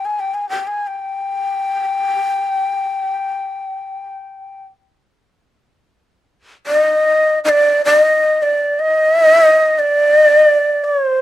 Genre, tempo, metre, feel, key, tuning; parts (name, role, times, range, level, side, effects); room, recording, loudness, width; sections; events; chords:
japanese traditional, Japanese chamber music; free time; A4 = 439 Hz
breathy bright shakuhachi; solo; 0.0-11.2 s; C5 to Ab5; -13 LUFS; equal
light reverb; dark, warm production; -12 LUFS; side -14 dB against mid
0.0-11.2 A section
slowing down 7.2-11.2